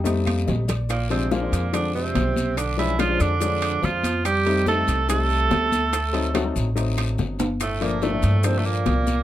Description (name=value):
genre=Afro-Cuban jazz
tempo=143 BPM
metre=4/4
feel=straight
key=F mixolydian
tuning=A4 = 440 Hz
part: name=bright tenor saxophone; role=melody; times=0.0-9.2 s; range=A3 to A4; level=-25 LUFS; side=right 4 dB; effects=none
part: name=growling tenor saxophone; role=second line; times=0.0-9.2 s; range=A2 to A3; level=-29 LUFS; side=right 4 dB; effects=none
part: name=warm upright piano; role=accompaniment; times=0.0-9.0 s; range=F3 to F5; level=-27 LUFS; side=left 5 dB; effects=none
part: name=upright bass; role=bass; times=0.0-9.2 s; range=G1 to G2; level=-24 LUFS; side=equal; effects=none
part: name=bongos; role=percussion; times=0.1-9.2 s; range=none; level=-32 LUFS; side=left 5 dB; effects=none
part: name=congas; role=percussion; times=0.1-9.2 s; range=none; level=-28 LUFS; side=left 2 dB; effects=none
part: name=guiro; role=percussion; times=0.1-9.2 s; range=none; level=-39 LUFS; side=left 6 dB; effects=none
part: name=maracas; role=percussion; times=0.1-9.2 s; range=none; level=-37 LUFS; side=left 10 dB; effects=none
part: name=timbales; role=percussion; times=0.1-9.1 s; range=none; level=-33 LUFS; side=right 7 dB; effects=none
part: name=claves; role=percussion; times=0.3-8.7 s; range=none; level=-37 LUFS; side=left 5 dB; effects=none
room=light reverb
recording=none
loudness=-20 LUFS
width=side -13 dB against mid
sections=0.0-9.2 A section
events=upright piano fill 0.0-0.9; drum fill 0.1-0.9, 7.0-7.6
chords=0.1 F7; 0.9 Bb7; 2.6 Bdim7; 4.3 F7; 5.9 D7b9; 7.6 Gm7